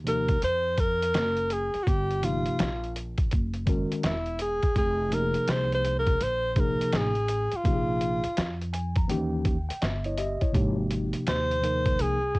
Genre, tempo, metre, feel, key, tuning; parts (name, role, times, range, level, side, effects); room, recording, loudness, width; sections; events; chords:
hip hop, jazz-hop; 83 BPM; 4/4; swing 65% on 16ths; F minor; A4 = 435 Hz
mellow tine electric piano; accompaniment; 0.0-12.2 s; C3 to Bb5; -29 LUFS; left 1 dB; medium stereo tremolo, cassette tape
upright bass; bass; 0.0-12.4 s; Fb1 to F2; -31 LUFS; equal
breathy alto saxophone; melody; 0.1-12.4 s; Fb4 to C5; -27 LUFS; equal; cassette tape
lo-fi sampler-style drum kit; drums; 0.1-12.4 s; hi-hat, kick drum, snare drum; -28 LUFS; equal
little or no reverb; home recording on cassette; -24 LUFS; side -23 dB against mid
0.0-4.8 A section; 4.8-12.4 A section
tine electric piano fill 8.4-10.5
0.0 Abmaj7 (rootless); 1.9 Eb69/G; 3.3 Gb9; 4.8 Fm7; 7.7 Bb5; 9.1 Eb7b9; 10.5 Abmaj7